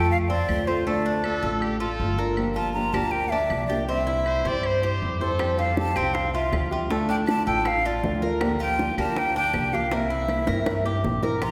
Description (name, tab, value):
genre	latin, Cuban son and guajira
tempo	159 BPM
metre	4/4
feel	straight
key	unclear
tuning	A4 = 438 Hz
part	breathy hollow jazz flute	melody	0.0-11.5 s	C5 to Bb5	-29 LUFS	equal	none
part	nylon-string guitar	accompaniment	0.0-11.4 s	C3 to G4	-31 LUFS	equal	none
part	Cuban tres	arpeggios	0.0-11.5 s	A3 to C5	-31 LUFS	equal	none
part	upright bass	bass	0.0-11.5 s	G1 to G2	-32 LUFS	equal	none
part	claves	percussion	0.5-11.5 s	none	-42 LUFS	equal	none
part	brilliant trumpet	second line	1.2-5.9 s	G4 to D5	-36 LUFS	equal	none
part	bongos	percussion	5.4-11.5 s	none	-34 LUFS	equal	none
room	wet concert hall reverb, RT60 2.3 s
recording	recorded in a church or concert hall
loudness	-24 LUFS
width	mono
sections	0.0-11.4 A section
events	drum fill 10.3-11.4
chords	0.0 F; 0.9 Dm; 2.4 Gm7; 3.9 C; 5.4 Fadd9; 6.9 Dm; 8.4 Gm7/D; 9.9 C7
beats	0.12 0.49 | 0.87 1.25 1.62 2.00 | 2.38 2.76 3.13 3.51 | 3.89 4.27 4.64 5.02 | 5.40 5.78 6.15 6.53 | 6.91 7.28 7.66 8.04 | 8.41 8.79 9.17 9.54 | 9.92 10.30 10.67 11.05 | 11.43